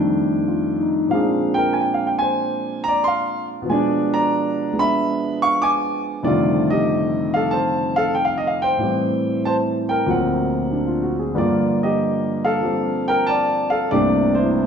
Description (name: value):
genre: solo jazz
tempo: 94 BPM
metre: 4/4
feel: swing 69% on 8ths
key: F mixolydian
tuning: A4 = 440 Hz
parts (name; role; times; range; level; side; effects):
- warm concert grand piano; solo; 0.0-14.7 s; C2 to D6; -17 LUFS; equal; none
room: wet recital hall reverb, RT60 1.4 s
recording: recorded in a church or concert hall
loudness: -17 LUFS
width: side -7 dB against mid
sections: 0.0-14.7 A section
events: none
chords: 0.0 F13; 1.1 Bb9; 3.7 Bdim7; 6.2 F13; 8.8 Am7; 10.1 D7alt; 11.4 Gm7; 13.9 C13